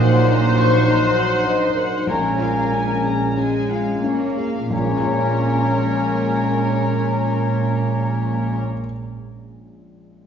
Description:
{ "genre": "cinematic", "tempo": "44-55 BPM", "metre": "4/4", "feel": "rubato", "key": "Bb minor", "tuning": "A4 = 435 Hz", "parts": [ { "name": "warm studio violin section", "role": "melody", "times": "0.0-8.6 s", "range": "Db5 to Db6", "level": "-30 LUFS", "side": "left 2 dB", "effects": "none" }, { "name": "clear clarinet", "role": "second line", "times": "0.0-8.6 s", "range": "Db4 to Eb4", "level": "-28 LUFS", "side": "equal", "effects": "none" }, { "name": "large flute ensemble", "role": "second line", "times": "0.0-8.6 s", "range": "Bb5 to C6", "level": "-27 LUFS", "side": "left 2 dB", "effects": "none" }, { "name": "warm oboe", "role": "second line", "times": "0.0-8.6 s", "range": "Gb5 to Ab5", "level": "-29 LUFS", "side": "left 2 dB", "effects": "none" }, { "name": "warm studio violin section", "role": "second line", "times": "0.0-8.6 s", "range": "Bb4 to C5", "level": "-26 LUFS", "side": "left 4 dB", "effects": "none" }, { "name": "felt-muted upright piano", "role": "accompaniment", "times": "0.0-10.3 s", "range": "Bb1 to Db5", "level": "-27 LUFS", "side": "left 2 dB", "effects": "none" }, { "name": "warm studio viola section", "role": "accompaniment", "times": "0.0-8.6 s", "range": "Bb4 to C5", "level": "-28 LUFS", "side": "equal", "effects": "none" }, { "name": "dark French horn section", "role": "sustained chords", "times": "0.0-8.6 s", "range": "Gb3 to Eb4", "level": "-28 LUFS", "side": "left 5 dB", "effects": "none" }, { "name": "concert harp", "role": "arpeggios", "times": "0.0-8.9 s", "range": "Bb2 to Db5", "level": "-34 LUFS", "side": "left 3 dB", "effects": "none" }, { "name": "clear studio cello section", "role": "bass", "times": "0.0-8.6 s", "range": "Bb2 to Bb3", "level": "-23 LUFS", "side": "right 3 dB", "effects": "none" }, { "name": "dark studio double bass section", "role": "bass", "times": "0.0-8.6 s", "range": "Bb1", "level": "-26 LUFS", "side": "right 4 dB", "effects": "none" } ], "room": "wet scoring stage reverb, RT60 1.7 s", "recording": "heard from further back in the room, nothing above 7.4 kHz", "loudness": "-17 LUFS", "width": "side -8 dB against mid", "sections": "0.0-4.7 A section; 4.7-10.0 B section", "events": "slowing down 0.0-4.7", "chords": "0.0 Gb6/Bb; 2.1 Bbm7" }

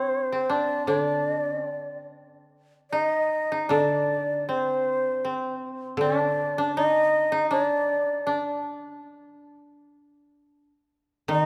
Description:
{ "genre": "japanese traditional, Japanese chamber music", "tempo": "79 BPM", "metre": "4/4", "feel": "rubato", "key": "unclear", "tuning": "A4 = 436 Hz", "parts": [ { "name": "mellow shakuhachi", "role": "melody", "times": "0.0-11.5 s", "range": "C5 to Eb5", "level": "-27 LUFS", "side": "equal", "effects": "none" }, { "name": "koto", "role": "second line", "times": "0.0-11.5 s", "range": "C4 to G4", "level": "-30 LUFS", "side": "equal", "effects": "none" }, { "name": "koto", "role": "accompaniment", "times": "0.0-11.5 s", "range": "D3 to G3", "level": "-32 LUFS", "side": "equal", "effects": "none" } ], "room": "moderate concert hall reverb, RT60 2.3 s", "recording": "none", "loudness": "-25 LUFS", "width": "mono", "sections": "0.0-2.9 A section; 2.9-11.5 B section", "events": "none", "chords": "none" }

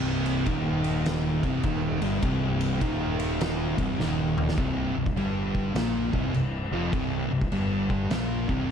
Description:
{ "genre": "stoner and doom metal", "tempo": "102 BPM", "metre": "4/4", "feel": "swing 65% on 8ths", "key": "C minor", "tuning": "A4 = 438 Hz", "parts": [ { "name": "thick fuzz guitar", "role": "riff", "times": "0.0-8.7 s", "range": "C2 to Bb3", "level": "-30 LUFS", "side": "left 9 dB", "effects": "distortion" }, { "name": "thick fuzz guitar", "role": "riff", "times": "0.0-8.7 s", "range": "C2 to Bb3", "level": "-29 LUFS", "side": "right 8 dB", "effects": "distortion" }, { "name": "fuzz fingered electric bass", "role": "bass", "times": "0.0-8.7 s", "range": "C1 to Bb1", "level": "-32 LUFS", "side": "equal", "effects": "overdrive" }, { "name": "oversized low-tuned drum kit", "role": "drums", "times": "0.3-8.6 s", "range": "crash cymbal, kick drum, ride cymbal, snare drum, toms", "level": "-30 LUFS", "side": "equal", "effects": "none" } ], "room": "light reverb, small room ambience", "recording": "dark, warm production", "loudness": "-24 LUFS", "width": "side -7 dB against mid", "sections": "0.0-4.6 A section; 4.6-8.7 B section", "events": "drum fill 4.0-4.6", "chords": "0.0 Cm; 4.6 C5" }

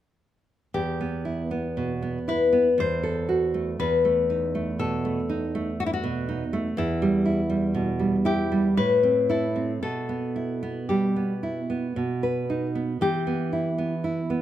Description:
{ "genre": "romantic duo for nylon-string guitar and classical guitar", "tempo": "56-62 BPM", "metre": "3/4", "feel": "rubato", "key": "E minor", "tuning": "A4 = 440 Hz", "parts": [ { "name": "nylon-string guitar", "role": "melody", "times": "0.7-14.4 s", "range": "E4 to C5", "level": "-26 LUFS", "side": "left 4 dB", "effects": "none" }, { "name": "nylon-string guitar", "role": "accompaniment", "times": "0.7-14.4 s", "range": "E2 to B4", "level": "-25 LUFS", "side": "right 2 dB", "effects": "none" } ], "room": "moderate recital hall reverb, RT60 1.4 s", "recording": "close, detailed microphones", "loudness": "-23 LUFS", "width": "side -12 dB against mid", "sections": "0.8-14.4 A section", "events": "none", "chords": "0.8 Em; 2.8 F#m7b5/E; 3.8 B7/E; 6.8 Em; 8.8 Am; 9.8 Em/B; 12.0 B; 13.0 Em" }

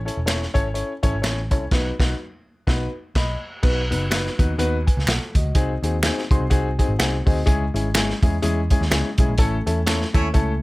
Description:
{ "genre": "uptempo 1960s-style soul", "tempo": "125 BPM", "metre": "4/4", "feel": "swing 58% on 8ths", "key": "B mixolydian", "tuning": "A4 = 441 Hz", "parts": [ { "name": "vintage muted picked electric bass", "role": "bass", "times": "0.0-10.6 s", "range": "E1 to E2", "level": "-24 LUFS", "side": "equal", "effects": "none" }, { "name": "dark grand piano", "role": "accompaniment", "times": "0.1-10.5 s", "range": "G#3 to B#5", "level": "-25 LUFS", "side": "left 2 dB", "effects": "none" }, { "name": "crunchy breakbeat drum kit", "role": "drums", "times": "0.1-10.5 s", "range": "crash cymbal, hi-hat, kick drum, snare drum", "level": "-21 LUFS", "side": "equal", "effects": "none" }, { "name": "finger snaps", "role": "percussion", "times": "0.3-10.0 s", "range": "none", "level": "-26 LUFS", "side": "right 1 dB", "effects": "none" }, { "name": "dark horn section", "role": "second line", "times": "9.9-10.3 s", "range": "A3 to C#5", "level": "-29 LUFS", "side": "right 2 dB", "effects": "none" } ], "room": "little or no reverb", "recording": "none", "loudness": "-19 LUFS", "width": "side -20 dB against mid", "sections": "0.0-3.6 A section; 3.6-10.6 B section", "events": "band accent 1.7-3.6, 9.4-10.6; grand piano fill 6.0-7.5", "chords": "0.0 A; 1.7 B; 5.6 G#7/B#; 7.5 C#m; 9.4 A" }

